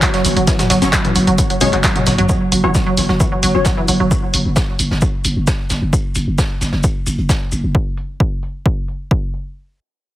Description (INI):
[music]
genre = driving peak-time techno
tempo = 132 BPM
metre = 4/4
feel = straight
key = unclear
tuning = A4 = 441 Hz
[part]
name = resonant blip pluck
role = riff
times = 0.0-4.1 s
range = E3 to G#3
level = -18 LUFS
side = right 1 dB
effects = chorus, sidechain pumping, tape echo
[part]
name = analog drone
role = drone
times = 0.0-2.3 s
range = F#3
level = -26 LUFS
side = equal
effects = none
[part]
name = electronic kick drum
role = drums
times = 0.0-9.2 s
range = none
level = -18 LUFS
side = equal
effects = none
[part]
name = punchy analog drum machine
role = drums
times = 0.0-9.4 s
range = handclaps, hi-hat, toms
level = -18 LUFS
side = equal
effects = low-pass filter on hats, low-pass filter on snare, low-pass filter on toms
[part]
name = vintage brush drum kit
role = drums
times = 0.0-7.6 s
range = hi-hat, shaker, snare drum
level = -26 LUFS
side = equal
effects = high-pass filter on hats, high-pass filter on snare, high-pass filter on perc, high-pass filter on room
[part]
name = growling 808-style bass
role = bass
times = 0.2-7.7 s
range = F#1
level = -18 LUFS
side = equal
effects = tube saturation, sidechain pumping, low-pass filter
[part]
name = rave stab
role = stabs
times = 0.8-3.6 s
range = F#3 to C#5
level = -23 LUFS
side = left 3 dB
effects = chorus, built-in reverb, sidechain pumping, tape echo
[sound]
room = small room ambience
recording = heavily compressed radio sound, multiband compression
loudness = -14 LUFS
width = side -15 dB against mid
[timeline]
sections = 0.0-2.3 A section; 2.3-9.6 B section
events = drop 0.0-2.3; drum fill 1.9-2.3; filter sweep on drum 2.3-9.6; filter sweep on synth stab 2.3-4.1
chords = 0.0 F#5